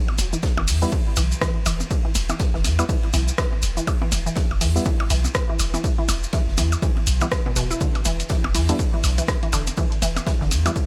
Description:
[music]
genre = minimal techno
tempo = 122 BPM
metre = 4/4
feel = swing 59% on 16ths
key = E minor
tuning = A4 = 445 Hz
[part]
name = percussion blips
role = percussion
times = 0.1-10.7 s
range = none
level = -33 LUFS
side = equal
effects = overdrive, tape echo
[part]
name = punchy sub bass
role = bass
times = 0.2-10.7 s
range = D1 to E2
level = -25 LUFS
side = equal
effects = sidechain pumping
[part]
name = punchy analog drum machine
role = drums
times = 0.2-10.7 s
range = hi-hat, rim click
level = -30 LUFS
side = equal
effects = none
[part]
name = raw garage drum kit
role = drums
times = 0.2-10.9 s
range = hi-hat, ride cymbal, snare drum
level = -39 LUFS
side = equal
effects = sidechain pumping on cymbals, high-pass filter on cymbals, sidechain pumping on hats, high-pass filter on hats, high-pass filter on snare, high-pass filter on room
[part]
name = maracas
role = percussion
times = 0.2-10.9 s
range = none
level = -32 LUFS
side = equal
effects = none
[part]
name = resonant blip pluck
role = riff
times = 0.3-10.7 s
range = B2 to E4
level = -32 LUFS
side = equal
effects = phaser, sidechain pumping, tape echo
[part]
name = electronic kick drum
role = drums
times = 0.4-10.9 s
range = none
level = -26 LUFS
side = equal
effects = none
[part]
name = percussive organ stab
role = stabs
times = 0.8-10.7 s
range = G3 to E4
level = -31 LUFS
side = equal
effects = chorus, tape echo
[sound]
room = small room ambience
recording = none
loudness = -22 LUFS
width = mono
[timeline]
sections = 0.0-10.9 A section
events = none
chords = 0.0 E5

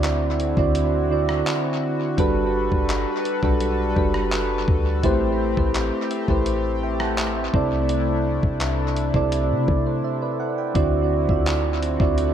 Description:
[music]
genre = contemporary R&B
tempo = 84 BPM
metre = 4/4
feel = straight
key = unclear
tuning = A4 = 440 Hz
[part]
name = soft electric-piano-like synth keys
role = accompaniment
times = 0.0-12.3 s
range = C3 to A5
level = -22 LUFS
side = right 3 dB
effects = chorus, tape echo
[part]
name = chorused pulse-width pad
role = sustained chords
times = 0.0-12.3 s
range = C3 to B4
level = -28 LUFS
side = left 4 dB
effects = sidechain pumping
[part]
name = clean 808-style bass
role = bass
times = 0.0-12.3 s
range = F#1 to C3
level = -25 LUFS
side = left 1 dB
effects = none
[part]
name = dusty soul sampler-style drum kit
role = drums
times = 0.0-12.3 s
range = handclaps, hi-hat, kick drum, rim click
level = -26 LUFS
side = left 1 dB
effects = tape echo
[sound]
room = light reverb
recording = echo-heavy mix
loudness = -19 LUFS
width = side -9 dB against mid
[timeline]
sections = 0.0-12.3 A section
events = break 10.0-10.8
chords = 0.0 D9; 2.2 Gmaj9; 5.0 Am7; 7.5 C69; 10.8 D9

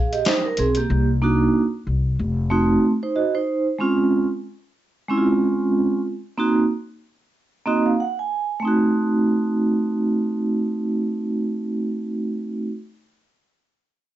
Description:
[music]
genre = hip hop, jazz-hop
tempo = 93 BPM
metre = 4/4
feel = swing 59% on 16ths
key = unclear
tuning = A4 = 440 Hz
[part]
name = vibraphone with medium mallets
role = accompaniment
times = 0.0-12.7 s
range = Ab3 to Ab5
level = -19 LUFS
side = right 2 dB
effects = none
[part]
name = upright bass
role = bass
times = 0.0-2.7 s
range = F1 to C2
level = -21 LUFS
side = left 2 dB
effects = none
[part]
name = boom bap sampler-style drum kit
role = drums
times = 0.1-0.9 s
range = hi-hat, snare drum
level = -22 LUFS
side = left 2 dB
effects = none
[sound]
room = moderate studio reverb, RT60 0.6 s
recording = nothing above 7.9 kHz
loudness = -19 LUFS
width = side -13 dB against mid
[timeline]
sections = 0.0-8.6 A section; 8.6-11.2 B section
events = vibraphone fill 7.3-8.6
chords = 0.0 Fm11; 0.9 Cm7b5; 2.2 F7b9; 3.5 Dbmaj7/Ab; 6.1 Ab9/Bb; 8.6 Adim7

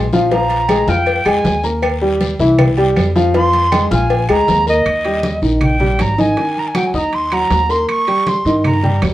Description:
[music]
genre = Afro-Cuban jazz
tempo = 158 BPM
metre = 4/4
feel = straight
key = Eb major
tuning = A4 = 438 Hz
[part]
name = warm upright piano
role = accompaniment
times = 0.0-9.1 s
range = Eb3 to F6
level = -16 LUFS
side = left 1 dB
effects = none
[part]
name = upright bass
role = bass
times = 0.0-9.1 s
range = Ab1 to G2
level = -19 LUFS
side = equal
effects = none
[part]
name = congas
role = percussion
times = 0.1-9.1 s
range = none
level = -20 LUFS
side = equal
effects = none
[part]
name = guiro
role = percussion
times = 0.1-9.1 s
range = none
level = -32 LUFS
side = left 5 dB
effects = none
[part]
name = silver concert flute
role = melody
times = 0.3-9.0 s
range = Eb5 to Db6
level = -17 LUFS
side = right 2 dB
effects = plate reverb
[part]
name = agogo bells and timbales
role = percussion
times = 0.3-9.1 s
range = none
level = -26 LUFS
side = right 5 dB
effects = none
[part]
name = cowbell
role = percussion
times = 0.3-4.7 s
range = none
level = -23 LUFS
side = left 6 dB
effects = none
[part]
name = claves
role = percussion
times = 0.7-9.1 s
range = none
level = -28 LUFS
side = right 3 dB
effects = none
[sound]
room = moderate studio ambience, RT60 0.5 s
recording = worn, warbling old tape, cassette tape, warbly pitch drift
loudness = -12 LUFS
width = side -14 dB against mid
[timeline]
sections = 0.0-4.9 A section; 4.9-9.1 B section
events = flute solo 0.0-4.9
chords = 0.3 Bb5; 1.8 Eb; 2.6 C; 3.3 Fm; 4.1 Bb7; 4.9 Eb; 6.4 Ebmadd11; 7.9 Eb7

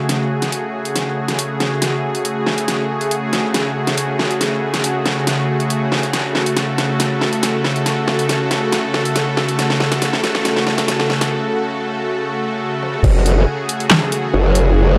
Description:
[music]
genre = heavy wobble dubstep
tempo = 139 BPM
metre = 4/4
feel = half-time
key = F# minor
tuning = A4 = 441 Hz
[part]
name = supersaw pad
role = sustained chords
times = 0.0-15.0 s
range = C#3 to A4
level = -21 LUFS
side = equal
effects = sidechain pumping
[part]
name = dubstep drum kit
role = drums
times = 0.1-14.6 s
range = crash cymbal, handclaps, hi-hat, snare drum, toms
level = -22 LUFS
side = equal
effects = overdrive, high-pass filter on hats, high-pass filter on snare, high-pass filter on toms, high-pass filter on cymbals, high-pass filter on room
[part]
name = growl bass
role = bass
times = 13.0-15.0 s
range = F#1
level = -15 LUFS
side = equal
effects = chorus, overdrive
[part]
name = electronic kick drum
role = drums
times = 13.0-13.1 s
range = none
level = -16 LUFS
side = equal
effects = overdrive
[sound]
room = moderate digital room reverb, RT60 1.2 s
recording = dark, warm production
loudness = -18 LUFS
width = mono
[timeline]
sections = 0.0-13.0 A section; 13.0-15.0 B section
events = build-up 0.0-13.0; drum fill 0.0-11.3, 12.8; break 11.3-13.0; drop 13.0-15.0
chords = 0.0 F#madd9

